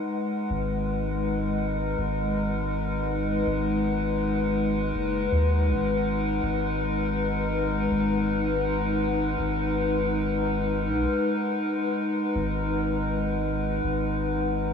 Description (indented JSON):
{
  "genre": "ambient dub",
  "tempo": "81 BPM",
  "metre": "4/4",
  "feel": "swing 55% on 16ths",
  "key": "G# minor",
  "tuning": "A4 = 440 Hz",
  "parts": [
    { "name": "warbly tape-like pad", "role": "sustained chords", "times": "0.0-14.7 s", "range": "G#3 to F#5", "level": "-25 LUFS", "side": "left 1 dB", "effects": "chorus, built-in reverb" },
    { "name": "soft dub sub bass", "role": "bass", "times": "0.5-14.7 s", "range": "F#1 to D#2", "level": "-28 LUFS", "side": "equal", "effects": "none" }
  ],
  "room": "moderate huge ambient reverb, RT60 5.3 s",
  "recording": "none",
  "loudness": "-24 LUFS",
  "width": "side -6 dB against mid",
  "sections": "0.0-14.7 A section",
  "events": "none",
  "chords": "0.0 G#m9",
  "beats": "| 0.13 0.87 1.61 2.35 | 3.09 3.83 4.57 5.31 | 6.05 6.80 7.54 8.28 | 9.02 9.76 10.50 11.24 | 11.98 12.72 13.46 14.20"
}